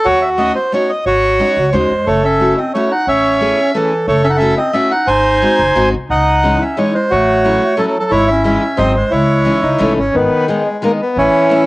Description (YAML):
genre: musette waltz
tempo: 179 BPM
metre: 3/4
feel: straight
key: C# harmonic minor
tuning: A4 = 440 Hz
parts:
  - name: bandoneon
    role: melody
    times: 0.0-11.7 s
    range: D#3 to G#5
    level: -13 LUFS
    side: equal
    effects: none
  - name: upright bass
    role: bass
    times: 0.1-11.3 s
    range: F#1 to F#2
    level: -19 LUFS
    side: equal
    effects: none
  - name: picked steel-string acoustic guitar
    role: accompaniment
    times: 0.4-11.7 s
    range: D#3 to G#4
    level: -19 LUFS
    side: left 2 dB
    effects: none
  - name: breathy clarinet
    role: second line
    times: 1.7-9.9 s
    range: E3 to D#4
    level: -19 LUFS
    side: right 1 dB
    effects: none
room: light reverb, small room reverb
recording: home recording on cassette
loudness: -11 LUFS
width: side -20 dB against mid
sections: 0.0-10.1 A section; 10.1-11.7 B section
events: none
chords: 0.1 D#m7b5; 1.1 G#7sus4; 2.1 F#m7; 3.1 Amaj7; 4.1 F#m7; 5.1 G#7; 6.1 C#madd9; 7.1 A6; 8.1 C#m/G#; 8.8 G#7; 9.1 C#madd9; 10.1 G#m; 11.2 A